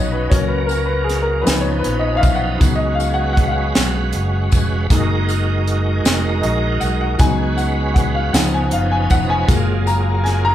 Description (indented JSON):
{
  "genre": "slow gospel",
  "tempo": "52 BPM (dotted quarters)",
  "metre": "6/8",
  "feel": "straight",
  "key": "F# major",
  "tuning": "A4 = 442 Hz",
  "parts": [
    { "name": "warm grand piano", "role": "accompaniment", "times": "0.0-10.5 s", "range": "E#3 to A#5", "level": "-21 LUFS", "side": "left 3 dB", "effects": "none" },
    { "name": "bright tonewheel organ", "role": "sustained chords", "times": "0.0-10.5 s", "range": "E#3 to B4", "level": "-23 LUFS", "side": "right 3 dB", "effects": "fast rotary speaker, overdrive, chorus vibrato" },
    { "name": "fingered electric bass", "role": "bass", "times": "0.0-10.5 s", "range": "E#1 to C#2", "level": "-20 LUFS", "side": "equal", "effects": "none" },
    { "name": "crisp fusion drum kit", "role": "drums", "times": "0.3-10.4 s", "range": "hi-hat, kick drum, snare drum", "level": "-18 LUFS", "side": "equal", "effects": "none" },
    { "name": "tambourine", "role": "percussion", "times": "0.3-10.2 s", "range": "none", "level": "-32 LUFS", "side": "left 6 dB", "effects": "none" }
  ],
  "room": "light reverb",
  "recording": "band playing live in one room",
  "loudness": "-15 LUFS",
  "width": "side -12 dB against mid",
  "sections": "0.0-10.5 A section",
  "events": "grand piano solo 0.0-10.5",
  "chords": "0.3 F#/C#; 1.5 C#9; 2.6 C#7sus4; 4.9 F#69; 7.2 C#7sus4; 8.3 C#9; 9.5 F#maj9",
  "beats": "| 0.32 1.47 | 2.61 3.76 | 4.91 6.05 | 7.20 8.34 | 9.49"
}